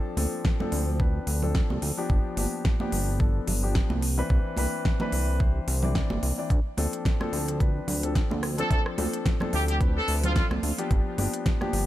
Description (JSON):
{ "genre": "nu-disco, nu disco", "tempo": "109 BPM", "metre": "4/4", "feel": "swing 56% on 16ths", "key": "D dorian", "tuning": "A4 = 439 Hz", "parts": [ { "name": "dark grand piano", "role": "accompaniment", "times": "0.0-11.9 s", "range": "E3 to D5", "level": "-32 LUFS", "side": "left 3 dB", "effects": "digital delay" }, { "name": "chorused synth bass", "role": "bass", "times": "0.2-11.9 s", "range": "G1 to D2", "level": "-27 LUFS", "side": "equal", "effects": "none" }, { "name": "pop drum kit", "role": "drums", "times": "0.2-11.9 s", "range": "hi-hat, rim click, snare drum", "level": "-33 LUFS", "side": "equal", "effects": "none" }, { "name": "congas", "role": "percussion", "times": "0.2-11.7 s", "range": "none", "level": "-35 LUFS", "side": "right 4 dB", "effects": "none" }, { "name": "electronic kick drum", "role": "drums", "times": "0.4-11.6 s", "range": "none", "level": "-24 LUFS", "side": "equal", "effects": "none" }, { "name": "brilliant trumpet section", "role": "melody", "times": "8.6-10.5 s", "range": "F4 to A4", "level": "-31 LUFS", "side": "equal", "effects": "tape echo" } ], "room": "little or no reverb", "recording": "none", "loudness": "-24 LUFS", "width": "side -14 dB against mid", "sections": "0.0-11.9 A section", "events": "none", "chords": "0.0 Dm7; 2.1 G7; 4.0 Cmaj9; 6.5 Dm7; 10.9 G7", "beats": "0.45 1.00 1.55 | 2.10 2.65 3.20 3.75 | 4.30 4.85 5.40 5.95 | 6.50 7.05 7.61 8.15 | 8.71 9.26 9.81 10.36 | 10.91 11.46" }